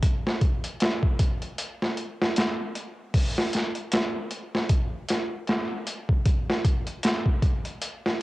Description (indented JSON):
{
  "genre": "trip hop",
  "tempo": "77 BPM",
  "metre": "4/4",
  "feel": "swing 57% on 16ths",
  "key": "none",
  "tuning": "none",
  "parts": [
    { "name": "boom bap sampler-style drum kit", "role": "drums", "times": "0.0-8.2 s", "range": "hi-hat, kick drum, snare drum", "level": "-24 LUFS", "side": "equal", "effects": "overdrive, vintage 12-bit sampler grit, cassette tape" }
  ],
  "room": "light reverb",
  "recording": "home recording on cassette",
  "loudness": "-24 LUFS",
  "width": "side -18 dB against mid",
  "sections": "0.0-8.2 A section",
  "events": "none",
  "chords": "none",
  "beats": "| 0.02 0.80 1.58 2.36 | 3.14 3.92 4.70 5.48 | 6.26 7.04 7.81"
}